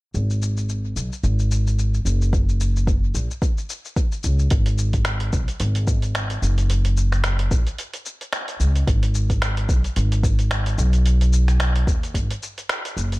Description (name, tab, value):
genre	sunset chillout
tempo	110 BPM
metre	4/4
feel	swing 56% on 16ths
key	G# minor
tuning	A4 = 440 Hz
part	upright bass	bass	0.1-13.2 s	F#1 to D#2	-19 LUFS	equal	tube saturation
part	dusty soul sampler-style drum kit	drums	0.1-13.2 s	finger snaps, hi-hat, shaker	-28 LUFS	equal	small room ambience, tape echo
part	electronic kick drum	drums	2.3-12.3 s	none	-21 LUFS	equal	small room ambience
room	little or no reverb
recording	echo-heavy mix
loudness	-18 LUFS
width	side -21 dB against mid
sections	0.1-4.5 A section; 4.5-13.2 B section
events	none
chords	none